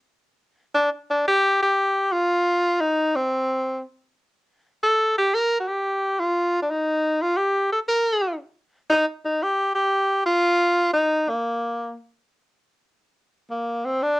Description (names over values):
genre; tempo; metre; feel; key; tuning
jazz; 118 BPM; 4/4; swing 68% on 8ths; Bb major; A4 = 440 Hz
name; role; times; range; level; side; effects
breathy tenor saxophone; solo; 0.7-14.2 s; Bb3 to Bb4; -20 LUFS; equal; cassette tape
room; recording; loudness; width
moderate studio ambience, RT60 0.5 s; home recording on cassette; -20 LUFS; side -20 dB against mid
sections
0.0-13.0 A section; 13.0-14.2 B section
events
tenor saxophone solo 13.0-14.2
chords
none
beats
0.25 | 0.76 1.26 1.77 2.28 | 2.79 3.30 3.81 4.32 | 4.83 5.34 5.85 6.36 | 6.87 7.38 7.89 8.40 | 8.91 9.42 9.93 10.44 | 10.95 11.46 11.97 12.48 | 12.99 13.50 14.01